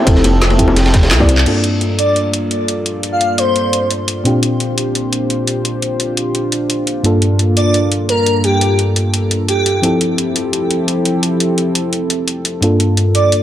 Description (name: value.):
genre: liquid drum and bass.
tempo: 172 BPM.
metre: 4/4.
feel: straight.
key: G dorian.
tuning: A4 = 441 Hz.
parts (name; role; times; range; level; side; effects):
mellow FM electric piano; accompaniment; 0.0-13.4 s; G2 to D5; -17 LUFS; left 1 dB; chorus, tape echo.
warm analog pad; sustained chords; 0.0-13.4 s; G2 to A5; -19 LUFS; equal; chorus, sidechain pumping.
smooth synth bass; bass; 0.1-1.4 s; F1 to C2; -13 LUFS; equal; none.
crunchy breakbeat drum kit; drums; 0.1-1.4 s; ride cymbal, snare drum; -24 LUFS; equal; high-pass filter on cymbals, high-pass filter on snare, high-pass filter on room.
drum and bass drum kit; drums; 0.1-13.4 s; crash cymbal, handclaps, hi-hat, snare drum; -18 LUFS; equal; none.
electronic kick drum; drums; 0.1-1.3 s; none; -13 LUFS; equal; none.
bongos; percussion; 0.2-1.3 s; none; -21 LUFS; left 3 dB; none.
airy dreamy lead; melody; 2.0-3.9, 7.6-9.9, 13.1-13.4 s; G4 to F5; -17 LUFS; equal; chorus, cassette tape, tape echo.
room: moderate plate reverb, RT60 1.4 s.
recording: none.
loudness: -12 LUFS.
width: side -11 dB against mid.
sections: 0.0-1.5 A section; 1.5-13.4 B section.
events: drum fill 1.1-1.5; band accent 1.4.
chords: 0.0 Fmaj9; 1.5 Gm9; 4.3 Bb69; 7.0 Gm9; 9.8 Fmaj9; 12.6 Gm9.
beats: | 0.07 0.42 0.77 1.11 | 1.46 1.81 2.16 2.51 | 2.86 3.21 3.56 3.90 | 4.25 4.60 4.95 5.30 | 5.65 6.00 6.35 6.70 | 7.04 7.39 7.74 8.09 | 8.44 8.79 9.14 9.49 | 9.84 10.18 10.53 10.88 | 11.23 11.58 11.93 12.28 | 12.63 12.97 13.32.